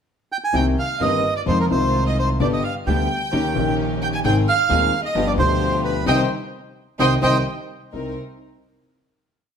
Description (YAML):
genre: tango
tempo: 130 BPM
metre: 4/4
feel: rubato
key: C minor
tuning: A4 = 440 Hz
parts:
  - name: bandoneon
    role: melody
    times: 0.3-7.4 s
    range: Bb4 to Ab5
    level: -22 LUFS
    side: right 4 dB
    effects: none
  - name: warm studio violin section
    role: second line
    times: 0.5-7.4 s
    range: Bb4 to Ab5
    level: -26 LUFS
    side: left 2 dB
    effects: none
  - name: warm concert grand piano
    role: accompaniment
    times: 0.5-8.1 s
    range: Eb1 to Bb4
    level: -22 LUFS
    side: left 4 dB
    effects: none
  - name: warm studio string section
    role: stabs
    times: 0.5-8.1 s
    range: Ab3 to Bb4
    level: -31 LUFS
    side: right 2 dB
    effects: none
  - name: upright bass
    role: bass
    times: 0.5-8.1 s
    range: G1 to F2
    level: -24 LUFS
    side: right 1 dB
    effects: none
room: wet large studio reverb, RT60 1.2 s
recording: none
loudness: -17 LUFS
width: side -7 dB against mid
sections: 0.0-0.5 pickup bar; 0.5-7.9 A section; 7.9-9.6 final chord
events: band accent 6.1-7.9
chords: 0.0 N.C.; 0.5 Cm7; 1.5 Fm7; 2.4 G; 3.3 Eb7; 4.2 Ab; 5.2 G7; 6.1 Cm; 7.5 N.C.; 7.9 Cm7